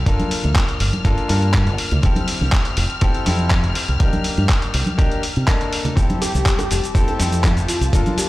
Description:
nu-disco, nu disco; 122 BPM; 4/4; straight; F major; A4 = 437 Hz
bright grand piano; accompaniment; 0.0-8.3 s; Bb3 to A4; -26 LUFS; left 2 dB; tape echo
dark studio string section; sustained chords; 0.0-8.3 s; A5 to F6; -31 LUFS; left 5 dB; vintage 12-bit sampler grit, sidechain pumping
fingered electric bass with an envelope filter; bass; 0.0-8.0 s; F1 to C3; -20 LUFS; equal
dusty soul sampler-style drum kit; drums; 0.1-8.3 s; cabasa, handclaps, hi-hat; -24 LUFS; equal; overdrive
electronic kick drum; drums; 0.1-8.0 s; -18 LUFS; equal; overdrive
congas, maracas and bongos; percussion; 0.2-8.2 s; -26 LUFS; equal
wide unison lead; melody; 6.2-8.3 s; F4 to A4; -25 LUFS; left 1 dB; tape echo
digital ambience; played on a big sound system in a bare room, stone room reverb; -16 LUFS; side -17 dB against mid
0.0-8.3 A section
0.1 Gm7; 2.0 Fmaj7; 4.0 Cm7; 6.0 Fmaj7

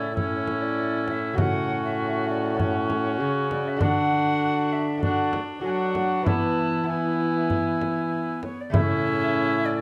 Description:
classical, renaissance-style consort dance; 98 BPM; 4/4; straight; A major; A4 = 442 Hz
mellow alto recorder; melody; 0.0-9.8 s; C#5 to A5; -34 LUFS; equal
warm cor anglais; second line; 0.0-9.8 s; E4 to F#4; -32 LUFS; equal
lute; accompaniment; 0.0-9.8 s; A2 to A4; -34 LUFS; equal
rich viola; accompaniment; 0.0-9.8 s; B3 to D4; -33 LUFS; equal
clear trombone; bass; 0.0-9.8 s; A2 to F#3; -30 LUFS; equal
frame drum; percussion; 0.2-9.0 s; -30 LUFS; equal
moderate recital hall reverb, RT60 1.6 s; close, detailed microphones; -25 LUFS; mono
0.0-8.7 A section; 8.7-9.8 A section
0.0 A; 1.4 F#m/A; 3.8 D; 6.3 E; 8.7 A

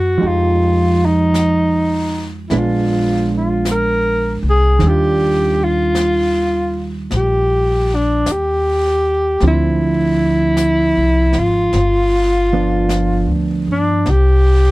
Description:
jazz ballad; 52 BPM; 4/4; swing 67% on 8ths; A4 = 440 Hz
breathy alto saxophone; melody; 0.0-14.7 s; D4 to Bb4; -16 LUFS; equal
hollow-body jazz guitar; accompaniment; 0.0-14.1 s; D3 to A4; -19 LUFS; right 4 dB
upright bass; bass; 0.0-14.7 s; G1 to G2; -18 LUFS; equal
jazz brush drum kit; drums; 0.2-14.7 s; brushed snare drum, hi-hat, snare drum; -31 LUFS; left 1 dB
light reverb; dry, close 1970s-style studio recording; -13 LUFS; side -19 dB against mid
0.0-14.7 A section
0.2 Fm9; 2.5 Bb7b9; 4.8 Ebmaj9; 9.4 Dm9; 11.7 G7; 14.1 C5

